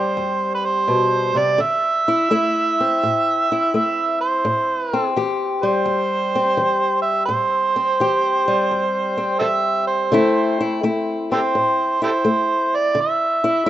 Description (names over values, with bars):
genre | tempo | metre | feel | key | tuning
acoustic country blues, solo or duo | 84 BPM | 4/4 | swing 67% on 8ths | A minor | A4 = 441 Hz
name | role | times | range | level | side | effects
overdriven harmonica | melody | 0.0-13.7 s | G4 to E5 | -18 LUFS | right 3 dB | none
fingerpicked old ladder-braced acoustic guitar | accompaniment | 0.0-13.7 s | E2 to G4 | -21 LUFS | left 3 dB | none
room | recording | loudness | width
light reverb, studio reverb | rough home demo mix, nothing above 7.7 kHz | -17 LUFS | side -12 dB against mid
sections
0.0-13.7 A section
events
none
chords
0.0 Am9 (rootless); 1.6 Dsus2; 4.4 Am7; 10.1 Dsus2